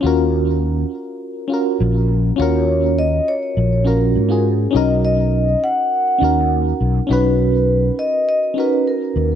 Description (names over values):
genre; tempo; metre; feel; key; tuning
sunset chillout; 102 BPM; 4/4; straight; Eb minor; A4 = 440 Hz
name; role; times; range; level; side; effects
mellow FM electric piano; accompaniment; 0.0-9.4 s; Db4 to B4; -20 LUFS; moving between left 4 dB and right 6 dB; chorus, auto-pan, digital delay
fretless electric bass; bass; 0.0-9.3 s; Bb1 to Ab2; -17 LUFS; equal; tube saturation, ensemble chorus
vibraphone with soft mallets; melody; 2.4-9.3 s; Bb4 to F#5; -19 LUFS; left 1 dB; digital delay
room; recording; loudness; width
light reverb, small room ambience; none; -15 LUFS; side -9 dB against mid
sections
0.0-9.4 A section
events
none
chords
0.0 Ebm7; 4.7 Bmaj7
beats
| 0.04 0.63 1.22 1.80 | 2.39 2.98 3.57 4.16 | 4.74 5.33 5.92 6.51 | 7.10 7.68 8.27 8.86